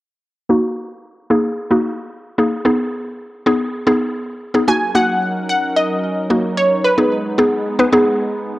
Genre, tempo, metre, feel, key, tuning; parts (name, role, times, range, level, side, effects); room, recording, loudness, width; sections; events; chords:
pop; 111 BPM; 4/4; straight; A4 = 441 Hz
mallet-like synth pluck; accompaniment; 0.5-8.3 s; Bb3 to Cb5; -16 LUFS; equal; chorus, low-pass filter, cassette tape
analog pluck; melody; 4.7-7.3 s; Cb5 to Ab5; -17 LUFS; equal; chorus, cassette tape, analog delay
lush unison pad; sustained chords; 4.7-8.6 s; Gb3 to Bb4; -23 LUFS; right 1 dB; chorus, cassette tape
wet spring reverb, RT60 2.0 s; home recording on cassette; -15 LUFS; side -17 dB against mid
0.4-4.7 A section; 4.7-8.6 B section
filter sweep on synth pluck 0.4-4.7
0.4 Gb6; 2.5 Abm; 4.7 Gb6; 6.8 Abm